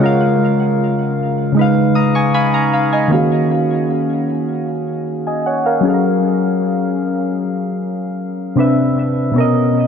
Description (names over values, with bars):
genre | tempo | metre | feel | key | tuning
R&B | 77 BPM | 4/4 | straight | Eb minor | A4 = 441 Hz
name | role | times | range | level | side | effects
soft electric-piano-like synth keys | solo | 0.0-9.9 s | B2 to Eb6 | -14 LUFS | equal | chorus, low-pass filter, tape echo
room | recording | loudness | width
moderate spring reverb, RT60 1.2 s | echo-heavy mix | -14 LUFS | side -7 dB against mid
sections
0.0-3.1 A section; 3.1-9.9 B section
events
synth keys fill 2.0-3.1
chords
0.0 Bbm7/Db; 1.6 Db9; 3.1 Ebm11; 5.8 Gbmaj7; 8.6 Cmaj9; 9.4 Bmaj9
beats
| 0.01 0.78 1.56 2.34 | 3.12 3.90 4.68 5.46 | 6.24 7.02 7.80 8.58 | 9.36